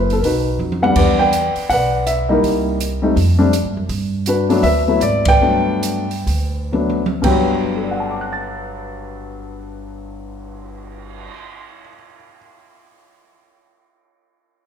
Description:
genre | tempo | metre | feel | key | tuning
jazz piano trio | 115-164 BPM | 4/4 | swing 63% on 8ths | G major | A4 = 440 Hz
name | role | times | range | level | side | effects
dark upright piano | melody | 0.0-12.4 s | G2 to A6 | -17 LUFS | left 2 dB | none
upright bass | bass | 0.0-11.3 s | F#1 to G2 | -22 LUFS | right 1 dB | none
open jazz drum kit | drums | 0.1-11.3 s | crash cymbal, cymbal swell, hi-hat, kick drum, ride cymbal, toms | -24 LUFS | right 3 dB | none
room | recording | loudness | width
moderate recital hall reverb, RT60 1.5 s | recorded in a church or concert hall | -15 LUFS | side -8 dB against mid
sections
0.0-7.2 A section; 7.2-11.4 B section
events
drum fill 0.6-1.0, 6.7-7.2; slowing down 3.9-7.2; band accent 5.2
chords
0.2 B; 1.0 Em7; 2.4 Cm7; 3.2 Fsus2; 3.9 Gmaj7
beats
0.23 0.60 | 0.96 1.33 1.69 2.06 | 2.42 2.79 3.15 3.52 | 3.89 4.25 4.63 5.01 | 5.41 5.82 6.26 6.73 | 7.23 7.75 8.28 8.80 | 9.32 9.84 10.37 10.89

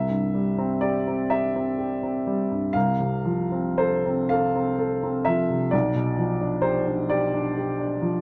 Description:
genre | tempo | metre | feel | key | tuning
classical, romantic nocturne for solo piano | 37-45 BPM (dotted quarters) | 6/8 | rubato | C major | A4 = 441 Hz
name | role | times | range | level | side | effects
clear baby grand piano | solo | 0.0-8.2 s | B1 to F5 | -24 LUFS | equal | none
room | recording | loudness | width
light reverb | dark, warm production | -24 LUFS | mono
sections
0.0-8.2 A section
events
none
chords
0.0 C; 2.8 F/C; 5.7 G7/B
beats
1.30 | 2.75 4.31 | 5.73 7.10

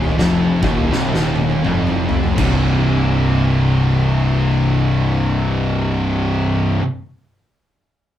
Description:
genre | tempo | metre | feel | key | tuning
stoner and doom metal | 82 BPM | 4/4 | swing 61% on 8ths | C minor | A4 = 440 Hz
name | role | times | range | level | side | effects
fuzz guitar | riff | 0.0-6.8 s | C2 to C3 | -19 LUFS | left 3 dB | distortion
high-gain distorted guitar | riff | 0.0-6.8 s | C2 to C3 | -22 LUFS | equal | distortion
thick fuzz guitar | riff | 0.0-6.8 s | C2 to C3 | -20 LUFS | right 2 dB | distortion
fuzz fingered electric bass | bass | 0.0-6.8 s | C1 to F1 | -23 LUFS | equal | overdrive
oversized low-tuned drum kit | drums | 0.0-2.6 s | crash cymbal, kick drum, snare drum, toms | -22 LUFS | left 1 dB | none
room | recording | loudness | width
wet small room ambience, RT60 0.5 s | band playing live in one room | -14 LUFS | side -11 dB against mid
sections
0.0-2.4 A section; 2.4-5.3 B section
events
drum fill 0.9-2.4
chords
0.0 Cm; 2.4 C5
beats
0.18 0.92 1.65 | 2.38 3.11 3.85 4.58

